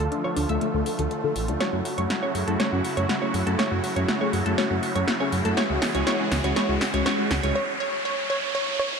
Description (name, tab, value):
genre	progressive house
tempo	121 BPM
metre	4/4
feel	straight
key	unclear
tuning	A4 = 440 Hz
part	wide unison pluck	melody	0.0-9.0 s	A4 to C#5	-31 LUFS	right 1 dB	tape echo
part	filtered supersaw swell	sustained chords	0.0-7.5 s	C#3 to A4	-31 LUFS	right 2 dB	none
part	glassy wavetable pluck	arpeggios	0.0-7.5 s	D4 to E5	-31 LUFS	right 2 dB	chorus, tape echo
part	deep mellow chord stab	stabs	0.0-7.5 s	D3 to D5	-28 LUFS	left 3 dB	ensemble chorus, tape echo
part	dark detuned saw bass	bass	0.0-7.5 s	A1 to F#2	-28 LUFS	right 1 dB	none
part	big-room dance drum kit	drums	0.0-7.5 s	hi-hat, snare drum	-29 LUFS	equal	none
part	riser	sound effects	0.1-9.0 s	none	-32 LUFS	right 1 dB	none
room	moderate lush hall reverb, RT60 2.2 s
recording	dark, warm production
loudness	-22 LUFS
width	side -5 dB against mid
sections	0.0-9.0 A section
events	build-up 0.0-9.0; filter sweep on synth arpeggio sound 0.0-9.0; filter sweep on synth stab 0.0-9.0; filter sweep on synth pluck 0.0-9.0; riser 0.1-9.0; drum fill 1.6-7.6; break 7.6-9.0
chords	0.0 Dm; 1.6 F#m7; 5.6 C#m